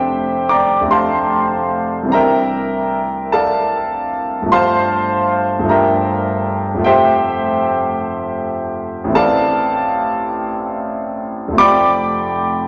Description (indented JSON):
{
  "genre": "classical, impressionist solo piano",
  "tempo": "46-54 BPM (dotted quarters)",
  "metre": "6/8",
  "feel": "rubato",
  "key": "F major",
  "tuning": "A4 = 441 Hz",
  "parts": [
    { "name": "clear concert grand piano", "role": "solo", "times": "0.0-12.7 s", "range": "F1 to D6", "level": "-16 LUFS", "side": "equal", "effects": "none" }
  ],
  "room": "wet scoring stage reverb, RT60 1.6 s",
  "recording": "none",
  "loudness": "-16 LUFS",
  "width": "mono",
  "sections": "0.0-12.7 A section",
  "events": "none",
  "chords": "0.0 F69; 2.1 C9; 4.5 Gm9; 6.9 Fadd9; 9.2 Amadd9; 11.6 Fadd9"
}